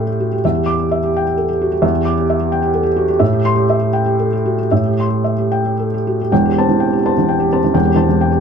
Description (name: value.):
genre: neoclassical minimalist piano.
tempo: 110-133 BPM.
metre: 3/4.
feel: rubato.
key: unclear.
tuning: A4 = 440 Hz.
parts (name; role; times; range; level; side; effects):
felt-muted upright piano; solo; 0.0-8.4 s; E1 to D6; -13 LUFS; equal; none.
room: light reverb.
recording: close, detailed microphones.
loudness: -13 LUFS.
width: side -6 dB against mid.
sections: 0.0-6.3 A section; 6.3-8.4 B section.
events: none.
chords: 0.4 Em7; 3.2 Am7; 6.3 Am7/E.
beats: | 0.44 0.91 1.37 | 1.83 2.28 2.74 | 3.21 3.68 4.18 | 4.71 5.25 5.79 | 6.31 6.78 7.27 | 7.74 8.21.